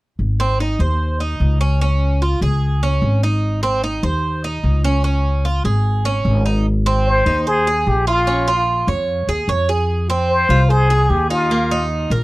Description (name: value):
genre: latin, Cuban son and guajira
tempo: 148 BPM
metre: 4/4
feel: straight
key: Ab major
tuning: A4 = 440 Hz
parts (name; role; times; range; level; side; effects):
- upright bass; bass; 0.2-12.2 s; Ab1 to F2; -17 LUFS; equal; none
- Cuban tres; arpeggios; 0.4-12.2 s; Bb3 to Db5; -21 LUFS; right 3 dB; none
- trumpet with plunger mute; melody; 7.1-11.9 s; F4 to C5; -18 LUFS; left 1 dB; tape echo
room: little or no reverb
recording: dry, close 1970s-style studio recording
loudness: -15 LUFS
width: side -19 dB against mid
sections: 0.2-6.7 A section; 6.7-12.2 B section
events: none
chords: 0.2 Ab; 1.8 Db; 3.4 Ab; 5.0 Db; 6.7 Abadd9; 8.3 Bbm7; 9.9 Fm; 11.5 Eb5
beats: | 0.20 0.60 1.00 1.41 | 1.81 2.22 2.62 3.03 | 3.43 3.83 4.24 4.64 | 5.05 5.45 5.85 6.26 | 6.66 7.07 7.47 7.87 | 8.28 8.68 9.09 9.49 | 9.89 10.30 10.70 11.10 | 11.51 11.91